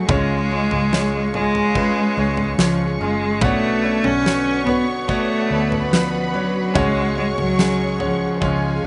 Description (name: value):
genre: pop ballad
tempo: 72 BPM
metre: 4/4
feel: straight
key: unclear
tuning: A4 = 442 Hz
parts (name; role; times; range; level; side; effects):
- rich cello; melody; 0.0-8.9 s; E#3 to C#4; -23 LUFS; equal; slapback echo
- bright grand piano; accompaniment; 0.0-8.9 s; G#2 to F#5; -26 LUFS; equal; none
- warm studio string section; sustained chords; 0.0-8.9 s; G#4 to C#6; -34 LUFS; equal; none
- picked steel-string acoustic guitar; arpeggios; 0.0-8.9 s; B2 to G#4; -33 LUFS; equal; none
- vintage muted fingered electric bass; bass; 0.0-8.9 s; F#1 to D2; -29 LUFS; equal; none
- huge arena drum kit; drums; 0.1-8.6 s; kick drum, snare drum, toms; -25 LUFS; equal; none
- warm studio violin section; second line; 3.4-8.9 s; G#4 to C#6; -31 LUFS; equal; slapback echo
room: little or no reverb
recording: recorded outdoors, with no room sound, nothing above 10.6 kHz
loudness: -19 LUFS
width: mono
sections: 0.0-8.9 A section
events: none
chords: 0.1 C#; 3.4 Bmadd9; 6.8 C#sus4